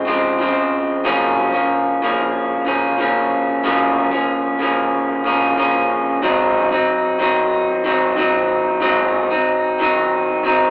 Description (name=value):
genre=indie pop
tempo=92 BPM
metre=4/4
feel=straight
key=unclear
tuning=A4 = 441 Hz
part: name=electric guitar through a small old amp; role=solo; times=0.0-10.7 s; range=Gb2 to Eb4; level=-14 LUFS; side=equal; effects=warbly pitch drift, analog delay
room=moderate large studio reverb, RT60 1.1 s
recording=band playing live in one room, AM radio sound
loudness=-15 LUFS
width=side -21 dB against mid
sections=0.0-10.7 A section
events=none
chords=0.0 Dbmaj7; 1.0 Gbmaj7; 6.2 Ab7